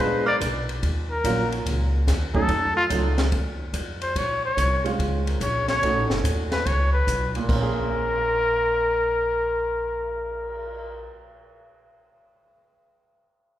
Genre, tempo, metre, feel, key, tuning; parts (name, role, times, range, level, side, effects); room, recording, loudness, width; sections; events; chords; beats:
jazz, small-group swing and bop; 144 BPM; 4/4; swing 66% on 8ths; Bb minor; A4 = 442 Hz
warm trumpet; melody; 0.0-11.1 s; F4 to D5; -24 LUFS; left 1 dB
clear upright piano; accompaniment; 0.0-11.2 s; Bb2 to Ab4; -29 LUFS; right 3 dB
upright bass; bass; 0.0-11.1 s; F#1 to F2; -26 LUFS; equal
compact cocktail drum kit; drums; 0.0-10.7 s; crash cymbal, cymbal swell, hi-hat, kick drum, ride cymbal, snare drum; -30 LUFS; equal
wet recital hall reverb, RT60 1.7 s; recorded in a church or concert hall; -21 LUFS; side -12 dB against mid
0.8-7.5 A section; 7.5-10.8 B section
0.0 Bb7b9; 0.8 Ebm7; 2.5 F7b9b13; 4.2 Bbm7; 5.8 B9; 7.5 Bbm7
0.41 | 0.82 1.24 1.66 2.07 | 2.49 2.91 3.32 3.74 | 4.16 4.57 4.99 5.41 | 5.82 6.24 6.66 7.07 | 7.49 7.91 8.32 8.74 | 9.16 9.57 9.99 10.41